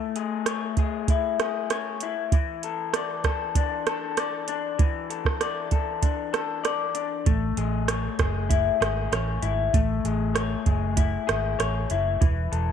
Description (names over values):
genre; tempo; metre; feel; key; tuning
indie pop, bedroom pop; 97 BPM; 4/4; straight; A major; A4 = 441 Hz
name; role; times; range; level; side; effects
electric guitar through a small old amp; accompaniment; 0.0-12.7 s; E3 to D5; -27 LUFS; left 10 dB; wide subtle chorus, warbly pitch drift
soft vintage rhythm box; drums; 0.2-12.7 s; hi-hat, kick drum, rim click; -25 LUFS; right 3 dB; none
vintage muted fingered electric bass; bass; 7.3-12.7 s; E1 to A1; -27 LUFS; right 1 dB; none
room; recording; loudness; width
moderate echo chamber reverb, RT60 2.2 s; 1960s-style stereo; -23 LUFS; side -8 dB against mid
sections
0.0-12.7 A section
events
none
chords
0.0 Amaj7; 2.3 E7sus4; 7.3 Amaj7; 12.2 Esus4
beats
0.46 1.08 1.70 | 2.32 2.94 3.55 4.17 | 4.79 5.41 6.03 6.64 | 7.26 7.88 8.50 9.12 | 9.74 10.36 10.97 11.59 | 12.21